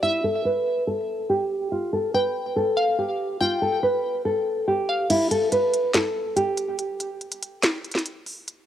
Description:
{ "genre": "hip hop, trap", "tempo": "142 BPM", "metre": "4/4", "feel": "half-time", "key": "unclear", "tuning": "A4 = 440 Hz", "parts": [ { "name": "nylon-string guitar", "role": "melody", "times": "0.0-6.8 s", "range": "E4 to B4", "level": "-22 LUFS", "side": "equal", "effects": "low-pass filter, cassette tape, tape echo" }, { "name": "glassy wavetable pluck", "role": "second line", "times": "0.0-5.1 s", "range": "E5 to G5", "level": "-27 LUFS", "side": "left 1 dB", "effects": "chorus, cassette tape, tape echo" }, { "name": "trap drum kit", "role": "drums", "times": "5.1-8.6 s", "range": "crash cymbal, finger snaps, hi-hat, snare drum", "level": "-25 LUFS", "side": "equal", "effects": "cassette tape" } ], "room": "light reverb", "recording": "home recording on cassette", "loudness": "-21 LUFS", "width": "side -11 dB against mid", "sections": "0.0-5.1 A section; 5.1-8.7 B section", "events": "filter sweep on nylon-string guitar 0.0-5.1; kick muted 5.1-8.7; break 6.8-8.7", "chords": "none" }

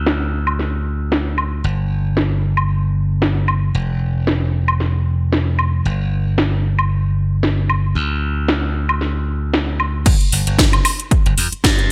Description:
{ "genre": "nu-disco, nu disco", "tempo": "114 BPM", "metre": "4/4", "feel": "swing 55% on 16ths", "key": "unclear", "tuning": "A4 = 435 Hz", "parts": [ { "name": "glassy slap bass", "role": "bass", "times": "0.0-11.9 s", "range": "F1 to G2", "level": "-20 LUFS", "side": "equal", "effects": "none" }, { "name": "house drum kit", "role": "drums", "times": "0.1-11.9 s", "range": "crash cymbal, hi-hat, snare drum, woodblock", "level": "-22 LUFS", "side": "equal", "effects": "overdrive, low-pass filter on perc, low-pass filter on snare, low-pass filter on hats, low-pass filter on cymbals, low-pass filter on room, gated reverb" }, { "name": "electronic kick drum", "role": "drums", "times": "10.1-11.8 s", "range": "none", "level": "-18 LUFS", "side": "equal", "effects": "overdrive" } ], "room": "light reverb", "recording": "bright 1980s-style digital production", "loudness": "-18 LUFS", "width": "mono", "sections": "0.0-10.1 A section; 10.1-11.9 B section", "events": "drop 10.1-11.9", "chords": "none" }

